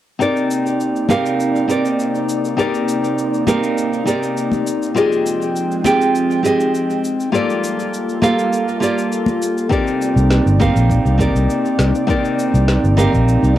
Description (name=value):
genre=sunset chillout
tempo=101 BPM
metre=4/4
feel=straight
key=C minor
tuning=A4 = 440 Hz
part: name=nylon-string guitar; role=accompaniment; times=0.2-13.6 s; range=Bb3 to G5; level=-17 LUFS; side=moving between left 4 dB and right 3 dB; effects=auto-pan, low-pass filter, cassette tape, tape echo, plate reverb
part: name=airy breathy pad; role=sustained chords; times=0.2-13.6 s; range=C3 to G5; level=-23 LUFS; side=equal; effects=chorus, cassette tape, plate reverb
part: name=electronic shaker and snare drum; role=drums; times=0.2-13.5 s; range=none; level=-28 LUFS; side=left 1 dB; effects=cassette tape
part: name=congas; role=percussion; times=1.1-13.1 s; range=none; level=-21 LUFS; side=left 3 dB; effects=none
part: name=electronic kick drum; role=drums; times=9.7-13.2 s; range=none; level=-21 LUFS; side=equal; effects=cassette tape
part: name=fingered electric bass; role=bass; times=10.2-13.6 s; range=G1 to C2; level=-14 LUFS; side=equal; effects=none
room=wet booth ambience, RT60 0.2 s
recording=home recording on cassette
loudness=-14 LUFS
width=side -13 dB against mid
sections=0.2-13.6 A section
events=none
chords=0.2 Cm9; 5.0 Fm9; 7.3 Gm9; 9.7 Cm9